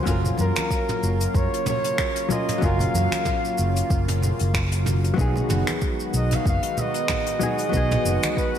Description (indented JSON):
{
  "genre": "sunset chillout",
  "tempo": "94 BPM",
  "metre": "4/4",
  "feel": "swing 56% on 16ths",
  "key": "unclear",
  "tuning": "A4 = 437 Hz",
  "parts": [
    { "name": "hollow-body jazz guitar", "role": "accompaniment", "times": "0.0-8.6 s", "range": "Gb3 to Bb4", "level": "-28 LUFS", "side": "left 2 dB", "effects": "auto-pan, digital delay" },
    { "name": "lush unison pad", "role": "sustained chords", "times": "0.0-8.6 s", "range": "Db3 to Gb4", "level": "-29 LUFS", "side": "left 1 dB", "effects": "chorus" },
    { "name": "mellow fretless electric bass", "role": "bass", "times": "0.1-8.2 s", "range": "Gb1 to Gb2", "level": "-23 LUFS", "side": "equal", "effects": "wide subtle chorus" },
    { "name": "electronic kick drum", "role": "drums", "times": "0.1-8.5 s", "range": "none", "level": "-26 LUFS", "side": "equal", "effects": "overdrive" },
    { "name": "soft brush drum kit", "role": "drums", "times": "0.1-8.6 s", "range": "finger snaps, hi-hat, shaker, toms", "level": "-29 LUFS", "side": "right 1 dB", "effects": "gated reverb" },
    { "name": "congas", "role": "percussion", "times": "0.2-8.3 s", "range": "none", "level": "-31 LUFS", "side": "right 2 dB", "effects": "none" },
    { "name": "warm flugelhorn", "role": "melody", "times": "0.4-8.6 s", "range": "Bb4 to F5", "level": "-27 LUFS", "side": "right 1 dB", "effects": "ping-pong delay" }
  ],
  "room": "moderate lush hall reverb, RT60 2.0 s",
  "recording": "bright 1980s-style digital production",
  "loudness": "-20 LUFS",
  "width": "side -9 dB against mid",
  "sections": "0.0-8.6 A section",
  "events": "none",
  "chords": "0.1 Gbmaj7; 5.2 Cb6"
}